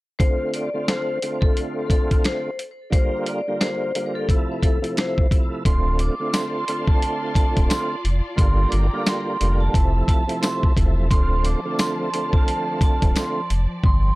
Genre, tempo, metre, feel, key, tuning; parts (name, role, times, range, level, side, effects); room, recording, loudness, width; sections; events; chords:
hip hop, boom-bap hip-hop; 88 BPM; 4/4; swing 60% on 16ths; D minor; A4 = 440 Hz
vibraphone with hard mallets; melody; 0.2-14.2 s; A4 to D6; -27 LUFS; equal; high-pass filter, low-pass filter, digital delay
tonewheel organ; accompaniment; 0.2-13.4 s; C3 to F4; -26 LUFS; right 2 dB; overdrive, chorus vibrato, slow rotary speaker, cassette tape, high-pass filter, low-pass filter
dusty soul sampler-style drum kit; drums; 0.2-14.0 s; hi-hat, kick drum, snare drum; -19 LUFS; equal
warm studio string section; sustained chords; 5.7-14.2 s; F3 to C6; -34 LUFS; left 2 dB; high-pass filter, low-pass filter
sub bass with octave; bass; 5.7-14.1 s; D1 to G1; -20 LUFS; equal
tambourine; percussion; 6.3-13.3 s; -35 LUFS; left 4 dB
little or no reverb; dark, warm production; -19 LUFS; side -20 dB against mid
0.2-5.7 A section; 5.7-14.2 B section
hi-hats muted 13.8-14.2
0.2 Dm7; 2.9 Gm7; 4.3 Fmaj7; 5.7 Dm7; 8.4 Gm7; 9.7 Fmaj7; 11.1 Dm7